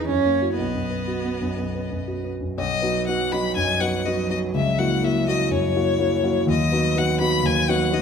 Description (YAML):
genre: quick classical-period movement for piano trio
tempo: 122 BPM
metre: 4/4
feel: rubato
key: B major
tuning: A4 = 440 Hz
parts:
  - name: rich violin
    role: melody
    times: 0.0-8.0 s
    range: C#5 to B5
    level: -25 LUFS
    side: left 6 dB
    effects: none
  - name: rich cello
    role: second line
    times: 0.0-8.0 s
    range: F#3 to C#4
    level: -28 LUFS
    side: right 4 dB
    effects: none
  - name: warm concert grand piano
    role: accompaniment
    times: 0.0-8.0 s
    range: B1 to F#4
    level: -22 LUFS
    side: equal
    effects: none
room: moderate stone room reverb, RT60 1.0 s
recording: minimal, uncompressed stereo recording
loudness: -20 LUFS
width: side -6 dB against mid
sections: 0.0-2.6 A section; 2.6-8.0 B section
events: none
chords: 0.1 F#7; 0.6 B; 4.5 F#7/C#; 6.5 B/D#